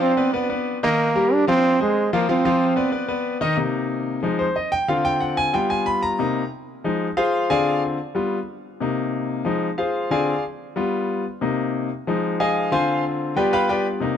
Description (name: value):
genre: latin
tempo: 184 BPM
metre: 4/4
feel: straight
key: C minor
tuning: A4 = 440 Hz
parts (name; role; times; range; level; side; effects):
- bright trombone; melody; 0.0-2.9 s; Ab3 to D4; -20 LUFS; right 2 dB; tape echo
- bright concert grand piano; accompaniment; 0.0-14.2 s; C3 to C6; -20 LUFS; left 2 dB; none
room: light reverb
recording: dark, warm production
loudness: -19 LUFS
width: side -8 dB against mid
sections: 0.0-3.6 A section; 3.6-14.2 B section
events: grand piano solo 3.6-14.2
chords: 0.3 Bmmaj7; 1.0 Ebmaj13; 1.6 Fm; 2.3 F5; 2.9 Bm; 3.6 Cm7; 4.2 Fm7; 4.9 Dm7b5; 5.5 G7; 6.2 Cm7; 6.9 Fm7; 7.5 Dm7b5; 8.2 G7; 8.8 Cm7; 9.5 Fm7; 10.1 Dm7b5; 10.8 G7; 11.4 Cm7; 12.1 Fm7; 12.7 Dm7b5; 13.4 G7